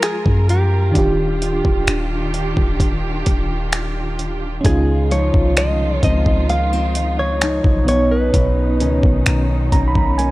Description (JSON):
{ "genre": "contemporary R&B", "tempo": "65 BPM", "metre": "4/4", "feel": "straight", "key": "unclear", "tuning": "A4 = 441 Hz", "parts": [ { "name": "direct-recorded clean electric guitar", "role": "melody", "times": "0.0-9.5 s", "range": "G4 to F5", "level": "-23 LUFS", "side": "equal", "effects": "tape echo" }, { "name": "FM electric piano with tremolo", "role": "accompaniment", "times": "0.0-10.3 s", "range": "Cb3 to Cb6", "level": "-23 LUFS", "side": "right 2 dB", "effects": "none" }, { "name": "warm studio string section", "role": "sustained chords", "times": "0.0-10.3 s", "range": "Cb3 to Bb4", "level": "-27 LUFS", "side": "right 1 dB", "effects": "none" }, { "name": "dusty soul sampler-style drum kit", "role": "drums", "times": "0.0-10.3 s", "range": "finger snaps, hi-hat, kick drum", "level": "-18 LUFS", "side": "equal", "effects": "overdrive" }, { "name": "clean 808-style bass", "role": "bass", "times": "0.3-10.3 s", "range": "Eb1 to Gb2", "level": "-19 LUFS", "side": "equal", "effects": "none" }, { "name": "nylon-string guitar", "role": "arpeggios", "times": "4.6-10.3 s", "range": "Cb3 to Eb4", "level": "-23 LUFS", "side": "left 2 dB", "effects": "none" } ], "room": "little or no reverb", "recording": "dry, gritty hardware recording", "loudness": "-15 LUFS", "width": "side -18 dB against mid", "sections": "0.0-4.6 A section; 4.6-10.3 B section", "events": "FM electric piano fill 9.3-10.3", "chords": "0.0 Gbmaj9; 1.0 Ebmaj9; 4.6 Dbmaj9; 7.9 Cbmaj9" }